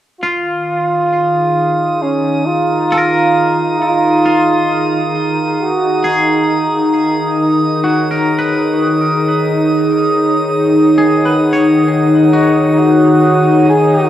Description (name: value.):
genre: ambient.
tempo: 67 BPM.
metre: 4/4.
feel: straight.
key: unclear.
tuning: A4 = 441 Hz.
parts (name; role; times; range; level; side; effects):
mellow flugelhorn; melody; 0.2-6.5, 12.3-14.1 s; Db4 to G#4; -15 LUFS; right 1 dB; cassette tape, tape echo.
warbly tape-like pad; sustained chords; 0.2-14.1 s; Eb3 to Bb5; -14 LUFS; left 1 dB; chorus, built-in reverb.
twangy electric guitar; arpeggios; 0.2-13.7 s; F4 to Db5; -20 LUFS; equal; tremolo, tape echo.
bowed-like drone; drone; 1.6-14.1 s; Eb3 to Eb4; -17 LUFS; equal; built-in reverb.
drifting glass-harmonics texture; texture; 1.0-14.1 s; Eb6; -22 LUFS; right 2 dB; chorus, built-in reverb.
room: wet small room ambience, RT60 0.5 s.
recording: home recording on cassette.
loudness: -11 LUFS.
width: side -12 dB against mid.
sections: 0.2-14.1 A section.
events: none.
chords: 0.2 Gbmaj7/Eb (rootless); 7.4 B6/D#.